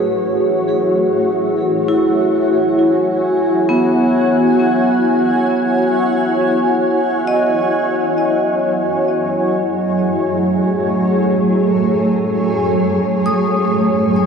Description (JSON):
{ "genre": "ambient", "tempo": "free time", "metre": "none", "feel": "none", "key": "F# dorian", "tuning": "A4 = 438 Hz", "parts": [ { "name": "granular cloud pad", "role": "sustained chords", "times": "0.0-14.3 s", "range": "F#3 to G#5", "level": "-14 LUFS", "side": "equal", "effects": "built-in reverb" }, { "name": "vibraphone with hard mallets", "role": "arpeggios", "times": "0.0-14.3 s", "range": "B3 to D#6", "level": "-19 LUFS", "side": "equal", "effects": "ping-pong delay" } ], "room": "wet huge ambient reverb, RT60 7.8 s", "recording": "dark, warm production", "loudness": "-13 LUFS", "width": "side -6 dB against mid", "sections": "0.0-14.3 A section", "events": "filter sweep on ambient pad 0.0-14.3", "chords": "0.0 F#m7; 7.9 Amaj9/F#" }